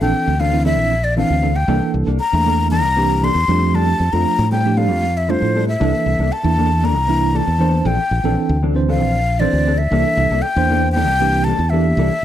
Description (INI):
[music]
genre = jazz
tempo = 117 BPM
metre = 4/4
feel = straight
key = unclear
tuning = A4 = 439 Hz
[part]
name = breathy mellow silver concert flute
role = melody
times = 0.0-12.2 s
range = C5 to C6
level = -19 LUFS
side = left 3 dB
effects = none
[part]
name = tine electric piano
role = accompaniment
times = 0.0-12.1 s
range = E3 to C5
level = -21 LUFS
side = right 4 dB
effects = fast stereo tremolo
[part]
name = mellow electric guitar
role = stabs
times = 0.0-12.2 s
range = E3 to A4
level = -24 LUFS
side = left 3 dB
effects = analog chorus
[part]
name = fingered electric bass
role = bass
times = 0.0-12.1 s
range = Bb1 to A2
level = -18 LUFS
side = equal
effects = none
[sound]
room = digital ambience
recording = dry, close 1970s-style studio recording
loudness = -14 LUFS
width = side -11 dB against mid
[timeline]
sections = 0.0-12.2 A section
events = none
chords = 0.0 Bbmaj9#11; 1.7 C13; 3.5 F69; 5.8 C13; 7.9 Bbmaj9#11; 9.9 C13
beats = 0.14 0.66 1.17 | 1.68 2.20 2.71 3.23 | 3.74 4.26 4.77 5.29 | 5.80 6.32 6.83 7.35 | 7.86 8.38 8.89 9.40 | 9.92 10.43 10.95 11.46 | 11.98